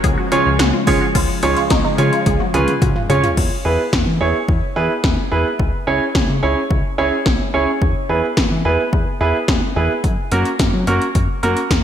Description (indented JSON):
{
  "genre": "synth-pop",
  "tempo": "108 BPM",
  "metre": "4/4",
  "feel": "straight",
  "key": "unclear",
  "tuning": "A4 = 437 Hz",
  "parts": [
    { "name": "string machine, violas", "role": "sustained chords", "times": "0.0-3.4 s", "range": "C#3 to G#3", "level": "-23 LUFS", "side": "left 2 dB", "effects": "ensemble chorus" },
    { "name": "resonant blip pluck", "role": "arpeggios", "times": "0.0-3.3 s", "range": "D#4 to G#4", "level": "-24 LUFS", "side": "left 1 dB", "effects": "phaser, ping-pong delay" },
    { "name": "chorused synth bass", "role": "bass", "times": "0.0-11.8 s", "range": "B1 to F#3", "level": "-21 LUFS", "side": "left 1 dB", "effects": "none" },
    { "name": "80s electronic pad drums", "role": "drums", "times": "0.0-11.8 s", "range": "crash cymbal, hi-hat, kick drum, snare drum, toms", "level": "-19 LUFS", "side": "left 1 dB", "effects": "gated reverb on snare and toms, gated reverb" },
    { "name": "clear concert grand piano", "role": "accompaniment", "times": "0.3-11.6 s", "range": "A#3 to C#5", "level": "-18 LUFS", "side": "right 2 dB", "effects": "none" }
  ],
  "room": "moderate lush hall reverb, RT60 2.4 s",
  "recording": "bright 1980s-style digital production",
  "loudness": "-14 LUFS",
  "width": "side -9 dB against mid",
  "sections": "0.0-1.1 A section; 1.1-3.4 B section; 3.4-11.8 C section",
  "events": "drum fill 2.3-3.4",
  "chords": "0.0 C#; 3.4 E; 5.6 C#m; 7.8 E; 10.0 F#"
}